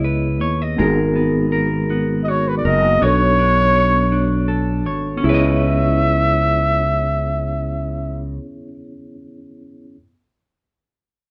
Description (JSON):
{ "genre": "R&B", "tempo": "54 BPM (dotted quarters)", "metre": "6/8", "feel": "straight", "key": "C# dorian", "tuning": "A4 = 440 Hz", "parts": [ { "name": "clear flugelhorn", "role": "melody", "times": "0.0-8.2 s", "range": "B4 to E5", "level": "-21 LUFS", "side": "equal", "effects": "none" }, { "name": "clean electric guitar", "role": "second line", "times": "0.0-8.8 s", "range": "G#3 to D#5", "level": "-25 LUFS", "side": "equal", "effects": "none" }, { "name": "mellow tine electric piano", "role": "accompaniment", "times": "0.0-10.0 s", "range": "B3 to D#5", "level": "-26 LUFS", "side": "equal", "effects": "none" }, { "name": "sustaining fretless electric bass", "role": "bass", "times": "0.0-8.4 s", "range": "F#1 to D#2", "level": "-22 LUFS", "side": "equal", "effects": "none" } ], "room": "light reverb", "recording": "band playing live in one room", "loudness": "-18 LUFS", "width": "mono", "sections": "0.0-5.2 A section; 5.2-7.5 B section", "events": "none", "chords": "0.0 C#m9; 0.8 G#m9; 3.0 Bm9; 5.2 C#m9" }